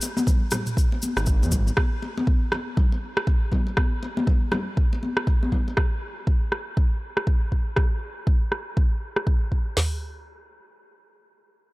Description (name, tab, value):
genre	afro house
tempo	120 BPM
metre	4/4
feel	swing 60% on 16ths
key	unclear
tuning	A4 = 439 Hz
part	cabasa	percussion	0.0-1.8 s	none	-33 LUFS	left 2 dB	none
part	congas	percussion	0.0-5.8 s	none	-29 LUFS	left 2 dB	none
part	afro-pop drum kit	drums	0.3-9.9 s	hi-hat, kick drum, snare drum, toms	-21 LUFS	equal	none
part	afro-pop drum kit	drums	0.5-9.2 s	rim click, toms	-30 LUFS	equal	low-pass filter on snare, low-pass filter on toms
part	dark detuned saw bass	bass	1.2-1.7 s	Ab1 to F2	-24 LUFS	equal	sidechain pumping
room	digital ambience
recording	none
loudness	-21 LUFS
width	side -21 dB against mid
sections	0.0-9.8 A section; 9.8-11.7 B section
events	none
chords	none